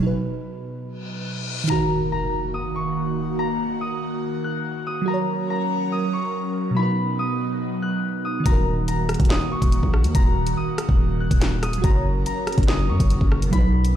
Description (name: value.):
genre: hip hop, drill.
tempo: 142 BPM.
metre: 4/4.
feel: half-time.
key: Eb minor.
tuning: A4 = 442 Hz.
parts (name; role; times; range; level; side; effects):
glassy digital keys; accompaniment; 0.0-14.0 s; B2 to Db5; -27 LUFS; right 3 dB; chorus.
reverse cymbal and impact; sound effects; 1.0-3.4 s; none; -31 LUFS; left 1 dB; none.
concert harp; melody; 1.7-14.0 s; Bb5 to Gb6; -28 LUFS; left 3 dB; digital delay.
airy breathy pad; sustained chords; 1.7-14.0 s; Eb3 to Bb4; -28 LUFS; right 1 dB; chorus, phaser.
distorted 808-style bass; bass; 8.5-13.9 s; Eb1 to Gb2; -22 LUFS; equal; distortion.
drill drum kit; drums; 8.5-13.9 s; handclaps, hi-hat, kick drum, rim click, snare drum; -20 LUFS; equal; none.
room: little or no reverb.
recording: played on a big sound system in a bare room, large studio reverb.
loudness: -20 LUFS.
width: side -10 dB against mid.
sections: 0.0-1.7 A section; 1.7-14.0 B section.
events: break 0.0-1.7; reverse cymbal 1.0-1.7; impact 1.7-3.4.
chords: 0.0 B; 1.7 Ebm; 5.1 Gb; 6.8 B; 8.5 Ebm; 11.8 Gb.